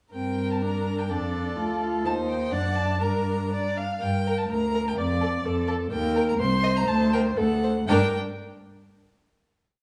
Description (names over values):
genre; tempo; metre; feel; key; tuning
quick classical-period movement for string quartet; 124 BPM; 2/4; rubato; G minor; A4 = 440 Hz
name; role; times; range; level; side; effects
clear violin; melody; 0.1-8.1 s; D5 to C6; -34 LUFS; equal; none
rich violin; second line; 0.1-8.2 s; A4 to F5; -32 LUFS; equal; none
rich viola; accompaniment; 0.1-8.2 s; C4 to D5; -32 LUFS; equal; none
rich cello; bass; 0.1-8.1 s; C2 to G2; -28 LUFS; equal; none
room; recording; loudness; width
wet recital hall reverb, RT60 1.4 s; small room ambience; -25 LUFS; mono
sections
0.1-4.0 A section; 4.0-7.9 A section; 7.9-8.9 final chord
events
none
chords
0.1 Gm; 1.1 Dm/F; 2.0 Cm/Eb; 2.5 D/F#; 3.0 Gm; 5.0 Dm/F; 5.9 Eb; 6.4 N.C.; 7.4 D; 7.9 Gm